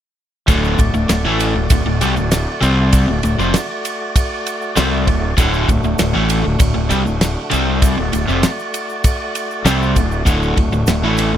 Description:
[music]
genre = classic rock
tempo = 98 BPM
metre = 4/4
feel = straight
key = D major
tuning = A4 = 441 Hz
[part]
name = tonewheel organ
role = sustained chords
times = 0.5-11.4 s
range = A3 to D5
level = -24 LUFS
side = equal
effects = slow rotary speaker, overdrive
[part]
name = overdriven electric guitar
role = riff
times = 0.5-11.4 s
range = D2 to C4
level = -17 LUFS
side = left 1 dB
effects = none
[part]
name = fuzz fingered electric bass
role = bass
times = 0.5-11.4 s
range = D1 to C2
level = -19 LUFS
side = equal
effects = overdrive
[part]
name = damped 70s drum kit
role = drums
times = 0.5-11.3 s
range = kick drum, ride cymbal, snare drum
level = -19 LUFS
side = equal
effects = none
[part]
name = tube shaker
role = percussion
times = 0.5-11.3 s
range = none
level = -31 LUFS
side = right 7 dB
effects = none
[sound]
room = light reverb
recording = none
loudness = -14 LUFS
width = side -10 dB against mid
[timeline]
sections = 0.5-11.4 A section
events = none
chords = 0.5 D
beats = | 0.48 1.10 1.71 2.32 | 2.93 3.55 4.16 4.77 | 5.38 5.99 6.61 7.22 | 7.83 8.44 9.05 9.66 | 10.27 10.88

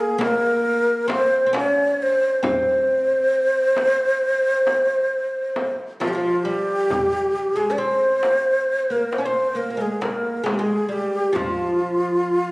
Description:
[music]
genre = Arabic maqam ensemble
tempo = 134 BPM (eighths)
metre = 10/8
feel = straight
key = C maqam hijaz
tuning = A4 = 443 Hz
[part]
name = breathy ney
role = melody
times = 0.0-12.5 s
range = F4 to Db5+33c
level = -19 LUFS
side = equal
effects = none
[part]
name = oud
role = second line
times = 0.0-12.5 s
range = F3 to Db4+25c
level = -26 LUFS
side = equal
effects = none
[part]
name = darbuka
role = percussion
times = 0.2-12.4 s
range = none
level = -33 LUFS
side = left 1 dB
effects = none
[part]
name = frame drum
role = percussion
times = 0.2-11.6 s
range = none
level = -31 LUFS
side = left 1 dB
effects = none
[sound]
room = wet recital hall reverb, RT60 1.6 s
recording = recorded on a phone in the room, club ambience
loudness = -18 LUFS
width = side -24 dB against mid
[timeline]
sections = 0.0-6.9 A section; 6.9-12.5 B section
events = none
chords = none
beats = 0.21 0.65 1.10 1.55 2.00 | 2.44 2.89 3.34 3.78 4.23 4.68 5.12 5.57 6.01 6.46 | 6.91 7.35 7.80 8.24 8.69 9.13 9.58 10.03 10.47 10.92 | 11.36 11.81 12.25

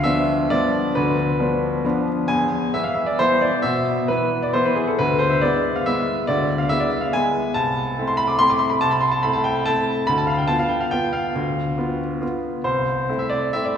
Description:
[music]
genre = classical, piano waltz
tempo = 129-150 BPM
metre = 3/4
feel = rubato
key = A minor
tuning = A4 = 437 Hz
[part]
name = clear baby grand piano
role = solo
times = 0.0-13.8 s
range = C2 to D6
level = -18 LUFS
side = equal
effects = none
[sound]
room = wet concert hall reverb, RT60 2.5 s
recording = recorded in a church or concert hall, studio ambience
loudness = -18 LUFS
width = side -8 dB against mid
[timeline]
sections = 0.0-13.8 A section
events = none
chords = 0.0 Bdim/D; 2.3 E; 5.0 E7/D; 7.6 Am/C; 10.1 Bdim/D; 12.7 Am/C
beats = 0.05 0.51 | 0.95 1.39 1.84 | 2.29 2.73 3.19 | 3.64 4.08 4.54 | 4.97 5.40 5.85 | 6.27 6.70 7.13 | 7.55 7.97 8.39 | 8.82 9.24 9.68 | 10.10 10.52 10.95 | 11.37 11.79 12.22 | 12.65 13.09 13.53

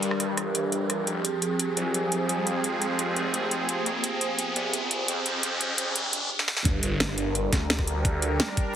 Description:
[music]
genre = dark technical drum and bass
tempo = 172 BPM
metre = 4/4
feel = straight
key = G phrygian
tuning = A4 = 440 Hz
[part]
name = sweeping resonant pad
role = sustained chords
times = 0.0-8.8 s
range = F3 to Bb4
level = -29 LUFS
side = right 1 dB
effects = chorus, sidechain pumping
[part]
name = phased detuned saw bass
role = bass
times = 0.0-8.4 s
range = F1 to G2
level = -30 LUFS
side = equal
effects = phaser, overdrive, sidechain pumping, high-pass filter
[part]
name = drum and bass drum kit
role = drums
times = 0.0-8.6 s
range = hi-hat, rim click, snare drum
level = -27 LUFS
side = equal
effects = high-pass filter on hats, high-pass filter on snare, high-pass filter on room
[part]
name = riser and sub drop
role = sound effects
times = 0.0-8.0 s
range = none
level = -32 LUFS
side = equal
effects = none
[part]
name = electronic kick drum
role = drums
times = 6.7-8.6 s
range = none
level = -26 LUFS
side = equal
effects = none
[sound]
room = moderate lush hall reverb, RT60 2.1 s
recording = heavily compressed radio sound, multiband compression, high-pass filter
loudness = -24 LUFS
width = side -9 dB against mid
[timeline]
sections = 0.0-6.7 A section; 6.7-8.8 B section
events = build-up 0.0-6.7; riser 0.0-6.3; filter sweep 0.0-6.7; drum fill 6.4; drop 6.7-8.8; impact 6.7-8.0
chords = 0.0 Gm; 1.1 Fm; 6.7 Gm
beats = 0.03 0.38 0.72 | 1.07 1.42 1.77 2.12 | 2.47 2.82 3.17 3.51 | 3.86 4.21 4.56 4.91 | 5.26 5.61 5.96 6.30 | 6.65 7.00 7.35 7.70 | 8.05 8.40 8.75

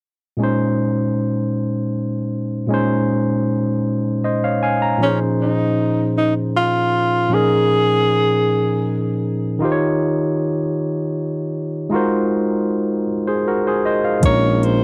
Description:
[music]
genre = slow six-eight R&B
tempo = 52 BPM (dotted quarters)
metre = 6/8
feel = straight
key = Bb minor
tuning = A4 = 440 Hz
[part]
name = barky tine electric piano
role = accompaniment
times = 0.4-14.8 s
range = Bb2 to Bb5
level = -20 LUFS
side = equal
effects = overdrive
[part]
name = breathy tenor saxophone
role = melody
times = 5.0-9.2, 14.3-14.8 s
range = Db4 to Db5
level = -20 LUFS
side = equal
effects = tape echo
[part]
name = mellow tuba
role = bass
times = 14.2-14.8 s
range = Bb1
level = -21 LUFS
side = equal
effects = none
[part]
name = smooth R&B drum kit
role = drums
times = 14.2-14.8 s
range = hi-hat, kick drum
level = -17 LUFS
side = equal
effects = overdrive
[sound]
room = light reverb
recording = dry, close 1970s-style studio recording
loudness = -19 LUFS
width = mono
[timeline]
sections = 0.4-5.0 A section; 5.0-14.8 B section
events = none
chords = 0.4 Bbm11; 9.6 Eb9; 11.9 Ab13; 14.2 Bbm11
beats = | 0.38 1.54 | 2.69 3.85 | 5.00 6.15 | 7.31 8.46 | 9.61 10.77 | 11.92 13.08 | 14.23

